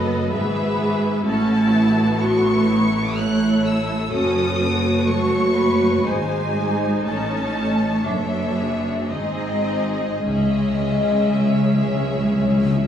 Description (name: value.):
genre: classical.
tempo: 42-65 BPM.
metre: 3/4.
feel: rubato.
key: C# minor.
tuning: A4 = 439 Hz.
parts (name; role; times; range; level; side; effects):
clear symphonic violin section; second line; 0.0-12.9 s; E4 to E5; -28 LUFS; left 2 dB; none.
rich symphonic viola section; accompaniment; 0.0-12.9 s; G#3 to A4; -22 LUFS; equal; none.
rich symphonic cello section; bass; 0.0-12.9 s; F#2 to C#3; -23 LUFS; right 1 dB; none.
rich symphonic double bass section; bass; 0.0-12.9 s; F#1 to C#2; -25 LUFS; right 1 dB; none.
rich symphonic violin section; melody; 1.3-12.9 s; C#5 to F#6; -27 LUFS; left 3 dB; none.
timpani; percussion; 10.3-12.9 s; C#3; -24 LUFS; left 2 dB; none.
room: wet recital hall reverb, RT60 1.5 s.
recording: heard from further back in the room, small room ambience.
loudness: -17 LUFS.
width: side -9 dB against mid.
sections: 0.0-12.9 A section.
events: timpani fill 10.3-12.9.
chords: 0.3 E/G#; 1.3 A; 4.1 F#m; 6.0 G#; 7.0 A; 8.0 D/F#; 9.1 G#; 10.3 C#m.